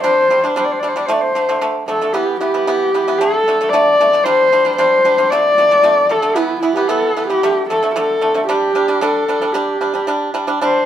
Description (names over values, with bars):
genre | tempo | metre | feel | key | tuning
mongolian traditional, Mongolian folk | 114 BPM | 4/4 | straight | G zhi mode | A4 = 440 Hz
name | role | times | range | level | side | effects
warm horsehead fiddle | melody | 0.0-10.9 s | E4 to D5 | -14 LUFS | left 1 dB | none
pipa | arpeggios | 0.0-10.8 s | D3 to D4 | -18 LUFS | right 2 dB | none
room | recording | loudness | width
moderate studio reverb, RT60 0.9 s | band playing live in one room | -13 LUFS | side -10 dB against mid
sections
0.0-10.6 A section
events
none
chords
0.0 G5; 1.1 D5; 2.2 E5; 3.2 D5; 4.3 G5; 5.3 D5; 6.4 E5; 7.4 D5; 8.5 G5